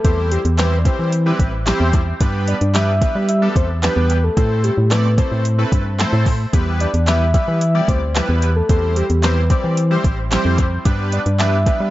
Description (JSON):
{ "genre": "dance-pop", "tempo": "111 BPM", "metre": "4/4", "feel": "straight", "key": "unclear", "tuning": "A4 = 440 Hz", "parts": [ { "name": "soft octave-layered synth lead", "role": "melody", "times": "0.0-11.9 s", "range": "G4 to E5", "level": "-22 LUFS", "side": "left 1 dB", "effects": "chorus, analog delay" }, { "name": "big bright polysynth", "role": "accompaniment", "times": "0.0-11.9 s", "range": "G3 to D5", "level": "-23 LUFS", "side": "equal", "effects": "chorus, sidechain pumping, analog delay" }, { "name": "organ-like FM bass", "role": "bass", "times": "0.0-11.9 s", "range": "A1 to G3", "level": "-17 LUFS", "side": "equal", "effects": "sidechain pumping" }, { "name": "smooth R&B drum kit", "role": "drums", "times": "0.0-11.8 s", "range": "handclaps, hi-hat, kick drum, snare drum", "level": "-19 LUFS", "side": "equal", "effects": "overdrive" } ], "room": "light reverb", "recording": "echo-heavy mix, nothing above 7.6 kHz", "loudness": "-14 LUFS", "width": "side -16 dB against mid", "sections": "0.0-11.9 A section", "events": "none", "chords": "0.0 C/E; 2.2 G; 4.4 Am; 6.5 Em; 8.7 C/E; 10.9 G" }